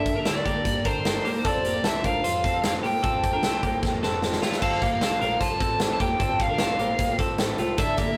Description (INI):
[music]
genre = jangly indie pop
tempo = 151 BPM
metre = 4/4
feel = straight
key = unclear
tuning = A4 = 440 Hz
[part]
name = dark smooth lead guitar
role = melody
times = 0.0-8.2 s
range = C5 to A5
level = -29 LUFS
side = equal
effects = overdrive
[part]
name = fingerpicked twelve-string acoustic guitar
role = accompaniment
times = 0.0-8.2 s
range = G2 to A4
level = -34 LUFS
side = equal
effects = none
[part]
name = twelve-string electric guitar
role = arpeggios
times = 0.0-8.2 s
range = A3 to C5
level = -31 LUFS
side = equal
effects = none
[part]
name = vintage muted fingered electric bass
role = bass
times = 0.0-8.2 s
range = F1 to G2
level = -38 LUFS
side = equal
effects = none
[part]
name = big rock drum kit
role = drums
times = 0.1-8.1 s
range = crash cymbal, hi-hat, kick drum, snare drum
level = -29 LUFS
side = equal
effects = none
[sound]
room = moderate stone room reverb, RT60 1.2 s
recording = rough rehearsal-room recording, warm saturation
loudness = -24 LUFS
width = mono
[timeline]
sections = 0.0-4.6 A section; 4.6-8.2 B section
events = drum fill 3.8-4.6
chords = 0.0 Gmadd9; 1.4 Fadd9